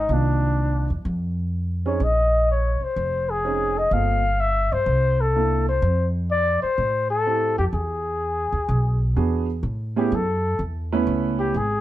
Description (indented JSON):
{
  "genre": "jazz, small-group swing and bop",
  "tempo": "126 BPM",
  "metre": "4/4",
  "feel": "swing 67% on 8ths",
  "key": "unclear",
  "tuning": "A4 = 440 Hz",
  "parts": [
    { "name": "trumpet with bucket mute", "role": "melody", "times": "0.0-11.8 s", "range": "D4 to F5", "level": "-22 LUFS", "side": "left 2 dB", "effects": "plate reverb" },
    { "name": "upright bass", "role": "bass", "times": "0.0-11.8 s", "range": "F1 to A2", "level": "-23 LUFS", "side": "equal", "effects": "none" },
    { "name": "warm concert grand piano", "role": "accompaniment", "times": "0.1-11.5 s", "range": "Eb3 to B4", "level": "-25 LUFS", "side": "right 6 dB", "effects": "none" }
  ],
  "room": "light reverb",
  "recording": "dark, warm production",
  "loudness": "-20 LUFS",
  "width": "side -14 dB against mid",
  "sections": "0.0-9.6 A section; 9.6-11.8 B section",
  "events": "muted trumpet solo 9.6-11.8",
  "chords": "0.1 Cm11; 1.1 Fm7; 2.0 Bbm11; 3.9 Gm11; 4.9 C13; 5.8 Fmaj7; 7.7 E9; 9.6 Aadd9"
}